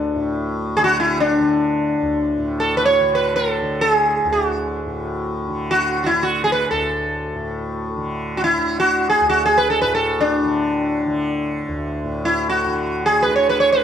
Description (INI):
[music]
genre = indian classical, Hindustani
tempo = free time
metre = none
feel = none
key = D raga yaman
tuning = A4 = 442 Hz
[part]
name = sitar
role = melody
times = 0.0-13.8 s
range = D4 to C#5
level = -17 LUFS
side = equal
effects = none
[part]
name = tanpura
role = drone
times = 0.0-13.8 s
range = D2 to D3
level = -25 LUFS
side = equal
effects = none
[sound]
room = moderate recital hall reverb, RT60 1.5 s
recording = dark, warm production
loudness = -17 LUFS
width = side -9 dB against mid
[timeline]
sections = 0.0-2.4 A section; 2.4-12.0 A section; 12.0-13.8 A section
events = none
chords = none